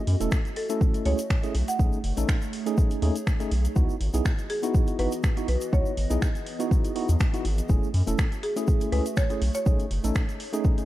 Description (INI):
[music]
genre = deep house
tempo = 122 BPM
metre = 4/4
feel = swing 54% on 16ths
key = C# minor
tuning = A4 = 440 Hz
[part]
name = warbly tape-like pad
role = sustained chords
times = 0.0-10.9 s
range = E3 to E5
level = -37 LUFS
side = right 1 dB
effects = chorus, built-in reverb, phaser, vintage 12-bit sampler grit, sidechain pumping
[part]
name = round analog bass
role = bass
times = 0.1-10.1 s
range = E1 to F#2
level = -25 LUFS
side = equal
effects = sidechain pumping
[part]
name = deep house drum kit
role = drums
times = 0.1-10.9 s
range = finger snaps, hi-hat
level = -36 LUFS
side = right 1 dB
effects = vintage 12-bit sampler grit, small room reverb
[part]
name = tine electric piano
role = stabs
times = 0.2-10.9 s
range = A3 to A4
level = -31 LUFS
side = right 1 dB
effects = medium stereo tremolo, sidechain pumping, analog delay
[part]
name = egg shaker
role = percussion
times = 0.2-10.9 s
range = none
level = -43 LUFS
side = left 3 dB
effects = none
[part]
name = electronic kick drum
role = drums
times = 0.3-10.8 s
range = none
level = -23 LUFS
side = equal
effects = vintage 12-bit sampler grit, small room reverb
[part]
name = buzzing marimba with hard mallets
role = melody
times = 0.6-10.9 s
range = G#4 to F#5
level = -32 LUFS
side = equal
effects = vintage 12-bit sampler grit, analog delay
[sound]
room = little or no reverb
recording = none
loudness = -23 LUFS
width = side -15 dB against mid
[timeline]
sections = 0.0-10.9 A section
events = none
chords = 0.0 F#m7; 1.5 B13; 3.8 C#m11; 7.7 F#m7; 9.4 B13 (rootless)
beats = 0.32 0.81 1.30 | 1.79 2.29 2.78 3.27 | 3.76 4.25 4.74 5.24 | 5.73 6.22 6.71 7.20 | 7.70 8.19 8.68 9.17 | 9.66 10.15 10.65